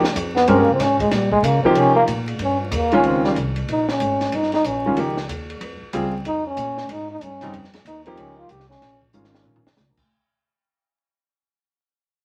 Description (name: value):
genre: modal jazz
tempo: 187 BPM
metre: 4/4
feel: swing 63% on 8ths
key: unclear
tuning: A4 = 440 Hz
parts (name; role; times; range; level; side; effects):
- upright bass; bass; 0.0-10.1 s; F1 to Db3; -29 LUFS; equal; none
- compact cocktail drum kit; drums; 0.0-10.0 s; crash cymbal, hi-hat, kick drum, ride cymbal, snare drum, toms; -32 LUFS; equal; none
- mellow trombone; second line; 0.4-9.0 s; F3 to G4; -22 LUFS; equal; none
- clear baby grand piano; accompaniment; 0.5-9.6 s; Db3 to Bb4; -21 LUFS; equal; none
room: moderate club reverb, RT60 0.7 s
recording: vinyl crackle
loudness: -20 LUFS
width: mono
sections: 0.0-10.1 A section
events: fade-out 0.0-10.1; trombone solo 0.0-10.1; drum fill 9.1-9.8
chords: 0.0 Eb13; 5.0 Bbm